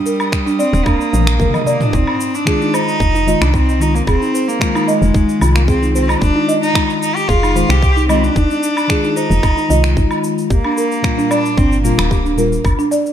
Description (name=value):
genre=organic downtempo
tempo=112 BPM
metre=4/4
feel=straight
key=F dorian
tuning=A4 = 440 Hz
part: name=clear cello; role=melody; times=0.0-12.3 s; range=G3 to G4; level=-19 LUFS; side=equal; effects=digital delay
part: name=buzzing marimba with soft mallets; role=arpeggios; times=0.0-13.1 s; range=D4 to Eb5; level=-19 LUFS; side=right 2 dB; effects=digital delay
part: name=drifting glass-harmonics texture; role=texture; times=0.0-1.9 s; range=Eb6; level=-32 LUFS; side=right 3 dB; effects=chorus, built-in reverb
part: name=organic electronic drum kit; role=drums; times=0.1-13.1 s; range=cabasa, finger snaps, toms, woodblock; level=-22 LUFS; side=equal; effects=none
part: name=electronic kick drum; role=drums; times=0.3-12.8 s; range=none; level=-18 LUFS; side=equal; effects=none
part: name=woody FM bass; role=bass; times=0.7-12.7 s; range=D1 to C2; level=-16 LUFS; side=equal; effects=none
part: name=cajon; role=percussion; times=0.7-1.8 s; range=none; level=-34 LUFS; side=left 1 dB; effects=none
part: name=muted felt-like synth keys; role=accompaniment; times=2.5-12.5 s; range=Bb2 to F4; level=-21 LUFS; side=left 4 dB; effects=chorus, vintage 12-bit sampler grit, sidechain pumping, digital delay
room=light reverb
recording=dark, warm production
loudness=-12 LUFS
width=side -10 dB against mid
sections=0.0-1.9 A section; 1.9-13.1 B section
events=drum fill 1.1-1.9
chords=0.0 Ebmaj7; 1.9 Fm7; 10.5 Gm7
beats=0.33 0.86 1.40 | 1.93 2.47 3.00 3.54 | 4.08 4.61 5.15 5.68 | 6.22 6.75 7.29 7.83 | 8.36 8.90 9.43 9.97 | 10.50 11.04 11.57 12.11 | 12.65